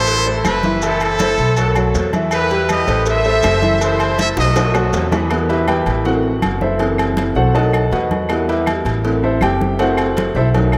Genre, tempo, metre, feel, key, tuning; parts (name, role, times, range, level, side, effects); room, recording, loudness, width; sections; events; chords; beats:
latin, salsa; 160 BPM; 4/4; straight; E harmonic minor; A4 = 440 Hz
brilliant trumpet section; melody; 0.0-5.1 s; C4 to E5; -22 LUFS; equal
clear concert grand piano; accompaniment; 0.0-10.8 s; E3 to A5; -21 LUFS; equal
upright bass; bass; 0.0-10.8 s; F#1 to E2; -22 LUFS; equal
congas; percussion; 0.1-10.8 s; -29 LUFS; equal
cowbell and bongos; percussion; 0.1-10.7 s; -28 LUFS; equal
maracas; percussion; 0.1-5.3 s; -35 LUFS; equal
timbales and agogo bells; percussion; 0.4-10.8 s; -27 LUFS; equal
claves; percussion; 0.5-10.8 s; -36 LUFS; equal
wet cathedral reverb, RT60 6.0 s; in a vast, echoing space; -16 LUFS; mono
0.0-5.3 A section; 5.3-10.8 B section
drum fill 4.4-5.3; grand piano solo 5.3-10.8
0.1 Am; 0.8 F#m7b5; 1.6 B5; 2.3 Em; 3.1 Am; 3.8 F#m7b5; 4.6 B5; 5.3 Em; 6.1 Am; 6.8 F#m7b5; 7.5 B7; 8.3 Em; 9.0 Am; 9.8 F#m7b5
0.08 0.45 | 0.83 1.20 1.57 1.95 | 2.32 2.69 3.07 3.44 | 3.81 4.19 4.56 4.93 | 5.31 5.68 6.05 6.43 | 6.80 7.18 7.55 7.92 | 8.30 8.67 9.05 9.42 | 9.79 10.17 10.54